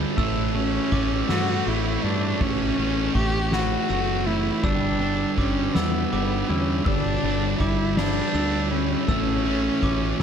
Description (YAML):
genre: post-rock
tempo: 54 BPM (dotted quarters)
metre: 6/8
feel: straight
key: unclear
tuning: A4 = 438 Hz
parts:
  - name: pedal steel guitar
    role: sustained chords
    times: 0.0-10.2 s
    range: C#4 to E6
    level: -39 LUFS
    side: left 2 dB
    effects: none
  - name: glockenspiel with brass mallets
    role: arpeggios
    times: 0.0-10.2 s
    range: C#6 to E6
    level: -35 LUFS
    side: right 3 dB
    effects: analog delay
  - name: twangy electric guitar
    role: arpeggios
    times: 0.0-10.2 s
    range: G3 to E4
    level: -35 LUFS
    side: left 4 dB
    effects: analog delay
  - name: thick fuzz guitar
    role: riff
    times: 0.0-10.2 s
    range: G2 to A3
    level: -26 LUFS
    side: right 2 dB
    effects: distortion
  - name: fingered electric bass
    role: bass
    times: 0.0-10.2 s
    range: F#1 to G2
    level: -28 LUFS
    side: equal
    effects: none
  - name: soft-mallet drum kit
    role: drums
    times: 0.2-10.2 s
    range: crash cymbal, kick drum, ride cymbal, snare drum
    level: -27 LUFS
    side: equal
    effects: none
  - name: warm cello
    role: melody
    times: 0.6-10.2 s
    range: A3 to G4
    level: -27 LUFS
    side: left 1 dB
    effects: analog delay
room: studio reverb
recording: none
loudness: -21 LUFS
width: side -8 dB against mid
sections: 0.0-10.2 A section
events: none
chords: 0.2 A; 4.6 G6; 9.1 A